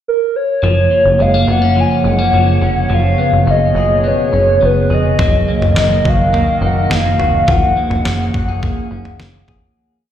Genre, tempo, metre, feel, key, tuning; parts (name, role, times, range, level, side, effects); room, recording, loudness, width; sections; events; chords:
dream pop; 105 BPM; 4/4; straight; F# major; A4 = 438 Hz
hollow clarinet-like synth lead; melody; 0.1-9.2 s; A#4 to G#5; -15 LUFS; left 1 dB; chorus, phaser, ping-pong delay
warbly tape-like pad; sustained chords; 0.9-9.8 s; B2 to F#5; -19 LUFS; right 2 dB; chorus, built-in reverb
electric guitar at the edge of break-up; arpeggios; 0.6-10.1 s; E#3 to G#4; -20 LUFS; left 1 dB; wide subtle chorus, ping-pong delay
plucky analog bass; bass; 0.6-9.7 s; E#1 to F#1; -16 LUFS; equal
detuned 8-bit digital drum machine; drums; 5.2-9.6 s; kick drum, snare drum, toms; -18 LUFS; equal
light reverb; played on a big sound system in a bare room, large studio reverb; -11 LUFS; side -10 dB against mid
0.0-0.6 pickup bar; 0.6-9.8 A section
fade-out 7.5-9.8
0.0 N.C.; 0.6 F#maj7; 2.9 C#7/F#; 5.2 Bmaj7/F#; 7.5 F#maj9